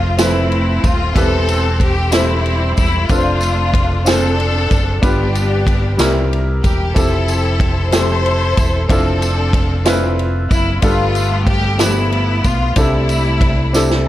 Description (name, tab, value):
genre	slow gospel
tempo	62 BPM (dotted quarters)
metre	6/8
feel	straight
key	unclear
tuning	A4 = 441 Hz
part	bright studio string section	melody	0.0-14.0 s	G3 to C5	-19 LUFS	left 2 dB	none
part	clear grand piano	accompaniment	0.0-14.1 s	G2 to E5	-20 LUFS	equal	none
part	fingered electric bass	bass	0.0-14.1 s	Eb1 to C2	-18 LUFS	equal	none
part	swinging big-band drum kit	drums	0.2-14.1 s	kick drum, ride cymbal, snare drum	-18 LUFS	equal	none
part	tambourine	percussion	0.2-14.0 s	none	-29 LUFS	right 2 dB	none
room	little or no reverb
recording	none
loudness	-13 LUFS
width	side -14 dB against mid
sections	0.0-14.1 A section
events	drum fill 13.7-14.1; grand piano fill 13.7-14.1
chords	0.0 Fmaj7; 1.2 Am9/E; 3.1 F6; 5.0 G7; 6.0 C7; 7.0 Fmaj9; 8.9 Dm9/F; 10.8 G9; 12.8 C69